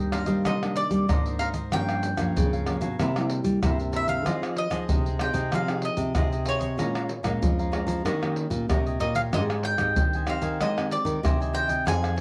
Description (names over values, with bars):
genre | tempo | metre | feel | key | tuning
samba and choro | 95 BPM | 4/4 | straight | unclear | A4 = 440 Hz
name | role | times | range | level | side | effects
mandolin | melody | 0.0-12.2 s | Db5 to Ab5 | -32 LUFS | equal | none
cavaquinho | accompaniment | 0.0-12.2 s | Eb4 to Bb5 | -38 LUFS | equal | none
nylon-string guitar | accompaniment | 0.0-12.2 s | F2 to Ab4 | -34 LUFS | equal | none
nylon-string guitar | bass | 0.0-12.2 s | F2 to G3 | -31 LUFS | equal | none
pandeiro, tamborim, tube shaker and surdo | percussion | 0.1-12.2 s | none | -30 LUFS | equal | none
room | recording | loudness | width
moderate studio ambience, RT60 0.5 s | dark, warm production | -26 LUFS | mono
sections
0.0-12.2 A section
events
none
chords
0.0 Cm9; 1.7 Gm7b5; 3.0 C7; 4.3 Fm7; 6.8 Bbm7; 8.1 Eb7; 9.3 Abmaj7